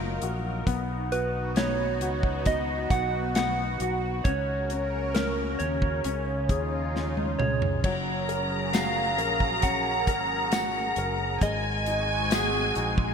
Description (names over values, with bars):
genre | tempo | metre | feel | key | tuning
pop ballad | 67 BPM | 4/4 | straight | F# major | A4 = 440 Hz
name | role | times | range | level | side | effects
warm baby grand piano | accompaniment | 0.0-13.1 s | F#3 to A#4 | -34 LUFS | left 6 dB | analog chorus
lush unison pad | sustained chords | 0.0-13.1 s | C#3 to A#4 | -33 LUFS | equal | chorus, phaser
fingered electric bass | bass | 0.0-13.1 s | F#1 to D#2 | -32 LUFS | equal | none
modern studio drum kit | drums | 0.2-13.1 s | crash cymbal, hi-hat, kick drum, snare drum, toms | -29 LUFS | equal | gated reverb
soft struck synth lead | melody | 1.1-13.1 s | G#4 to F#5 | -30 LUFS | right 3 dB | chorus
warm studio violin section | second line | 7.8-13.1 s | G#5 to A#5 | -28 LUFS | equal | ping-pong delay
tambourine | percussion | 8.7-12.5 s | none | -44 LUFS | right 10 dB | none
room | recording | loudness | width
moderate lush hall reverb, RT60 2.5 s | bright 1980s-style digital production | -24 LUFS | side -6 dB against mid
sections
0.0-13.1 A section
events
drum fill 6.9-7.8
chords
0.0 D#madd9/F#; 0.7 B; 4.3 F#/C#; 6.0 C#add9; 7.8 F#add9; 11.4 G#7